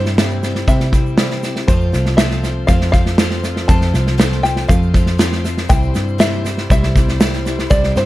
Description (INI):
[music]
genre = indie folk with a building arrangement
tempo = 120 BPM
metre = 4/4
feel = straight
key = unclear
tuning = A4 = 440 Hz
[part]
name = open-back banjo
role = melody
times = 0.0-8.1 s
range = C5 to A5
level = -21 LUFS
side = left 2 dB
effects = none
[part]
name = picked steel-string acoustic guitar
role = accompaniment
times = 0.0-8.1 s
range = C3 to C5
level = -26 LUFS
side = left 4 dB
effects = none
[part]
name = warm upright piano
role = accompaniment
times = 0.0-8.1 s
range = F1 to G5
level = -28 LUFS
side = right 4 dB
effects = none
[part]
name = warm chamber string section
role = sustained chords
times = 0.0-8.1 s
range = C3 to C5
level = -30 LUFS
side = equal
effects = none
[part]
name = picked electric bass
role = bass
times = 0.0-8.1 s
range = C2 to C3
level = -18 LUFS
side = equal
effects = none
[part]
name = natural country drum kit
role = drums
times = 0.1-8.0 s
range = kick drum, snare drum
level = -16 LUFS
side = equal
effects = none
[part]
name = egg shaker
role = percussion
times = 0.1-8.1 s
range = none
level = -37 LUFS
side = right 14 dB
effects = none
[sound]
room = light reverb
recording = dark, warm production, faint mains hum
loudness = -13 LUFS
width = side -16 dB against mid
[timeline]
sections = 0.0-8.1 A section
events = none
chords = 0.0 C; 1.7 F; 5.7 C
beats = 0.18 0.68 1.18 | 1.68 2.18 2.68 3.18 | 3.69 4.19 4.69 5.19 | 5.69 6.20 6.70 7.20 | 7.70